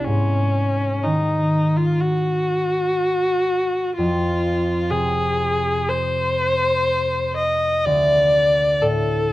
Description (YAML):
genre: classical, impressionist duo for viola and harp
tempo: 61 BPM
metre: 4/4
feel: rubato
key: Ab lydian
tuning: A4 = 439 Hz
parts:
  - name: rich viola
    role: melody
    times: 0.0-9.3 s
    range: Db4 to Eb5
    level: -19 LUFS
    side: left 1 dB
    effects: none
  - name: concert harp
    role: accompaniment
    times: 0.0-9.3 s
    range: C2 to E4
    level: -23 LUFS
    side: equal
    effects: none
room: moderate recital hall reverb, RT60 1.4 s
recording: none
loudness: -17 LUFS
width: side -16 dB against mid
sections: 0.0-9.3 A section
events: none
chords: 0.1 Abm7; 4.0 Fm; 7.9 D5